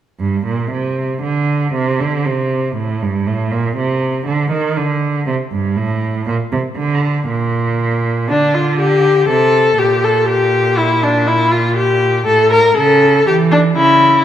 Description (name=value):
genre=classical, baroque-style fugue for string quartet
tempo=60 BPM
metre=4/4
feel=straight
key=G minor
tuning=A4 = 440 Hz
part: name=rich cello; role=bass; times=0.2-14.2 s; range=G2 to E3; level=-16 LUFS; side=right 3 dB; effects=none
part: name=rich viola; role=accompaniment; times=8.3-14.2 s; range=D4 to Bb4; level=-11 LUFS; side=left 2 dB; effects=none
room=moderate concert hall reverb, RT60 1.9 s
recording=none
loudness=-12 LUFS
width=side -10 dB against mid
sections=0.2-14.2 A section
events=none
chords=0.2 Gm; 2.2 C5; 4.3 D5; 6.3 Bb; 8.3 Dm; 10.3 Gm/Bb; 12.3 A